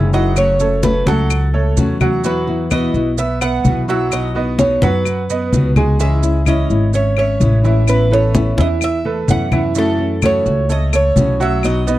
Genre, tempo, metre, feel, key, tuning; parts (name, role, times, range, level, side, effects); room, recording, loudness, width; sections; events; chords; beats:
latin, Cuban son and guajira; 128 BPM; 4/4; straight; A4 = 442 Hz
Cuban tres; melody; 0.0-12.0 s; A4 to F#5; -20 LUFS; right 2 dB
nylon-string guitar; accompaniment; 0.0-12.0 s; B2 to F#4; -21 LUFS; left 4 dB
bright concert grand piano; arpeggios; 0.0-12.0 s; E3 to G#5; -21 LUFS; right 4 dB
upright bass; bass; 0.0-12.0 s; F#1 to F#2; -17 LUFS; equal
congas; percussion; 0.1-12.0 s; -19 LUFS; left 1 dB
maracas; percussion; 0.1-12.0 s; -31 LUFS; right 21 dB
claves; percussion; 0.4-11.9 s; -25 LUFS; left 23 dB
little or no reverb; dry, close 1970s-style studio recording; -13 LUFS; side -15 dB against mid
0.0-12.0 A section
0.4 F#m; 2.2 Esus2; 4.1 B; 6.0 C#m; 7.9 Aadd9; 9.8 F#m7
| 0.37 0.83 1.30 1.77 | 2.24 2.71 3.18 3.65 | 4.12 4.59 5.06 5.53 | 6.00 6.47 6.94 7.41 | 7.88 8.35 8.82 9.29 | 9.76 10.23 10.70 11.17 | 11.64